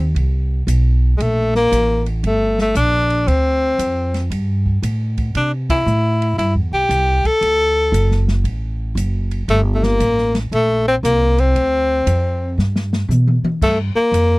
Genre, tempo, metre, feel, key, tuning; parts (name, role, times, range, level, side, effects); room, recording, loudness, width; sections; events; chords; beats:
jazz, small-group swing and bop; 116 BPM; 4/4; swing 66% on 8ths; G minor; A4 = 440 Hz
bright tenor saxophone; melody; 0.0-14.4 s; Ab3 to A4; -16 LUFS; left 1 dB
upright bass; bass; 0.0-14.4 s; F#1 to C3; -17 LUFS; equal
open jazz drum kit; drums; 0.2-14.3 s; crash cymbal, hi-hat, kick drum, ride cymbal, snare drum, toms; -25 LUFS; equal
little or no reverb; dry, close 1970s-style studio recording; -15 LUFS; side -23 dB against mid
0.0-13.6 A section
band accent 5.6; drum fill 12.6-13.6
0.0 N.C.; 1.2 Bb6; 3.3 Dm7; 4.3 Gsus2; 5.3 C; 7.4 D; 9.5 Gmadd9; 11.5 Dm7; 12.6 G; 13.6 C7(no3) (rootless)
0.16 0.68 | 1.20 1.72 2.24 2.75 | 3.27 3.79 4.31 4.83 | 5.35 5.86 6.38 6.90 | 7.42 7.93 8.45 8.97 | 9.48 10.00 10.52 11.03 | 11.55 12.06 12.58 13.10 | 13.61 14.13